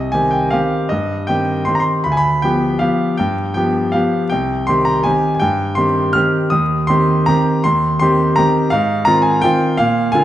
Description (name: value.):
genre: classical, piano waltz.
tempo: 150-179 BPM.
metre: 3/4.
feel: rubato.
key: C minor.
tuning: A4 = 439 Hz.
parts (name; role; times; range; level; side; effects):
bright concert grand piano; solo; 0.0-10.2 s; C2 to F6; -13 LUFS; equal; none.
room: moderate scoring stage reverb, RT60 1.6 s.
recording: dark, warm production, vinyl crackle, nothing above 11.0 kHz.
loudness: -13 LUFS.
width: side -12 dB against mid.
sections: 0.0-10.2 A section.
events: none.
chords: 0.0 Cm; 2.1 G7/D; 4.3 Cm; 6.5 Cm/Eb; 8.7 Fm7/Ab.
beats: 0.15 0.54 | 0.91 1.29 1.68 | 2.06 2.45 2.83 | 3.20 3.58 3.95 | 4.33 4.70 5.07 | 5.43 5.80 6.17 | 6.54 6.91 7.30 | 7.66 8.01 8.38 | 8.73 9.07 9.43 | 9.79 10.14.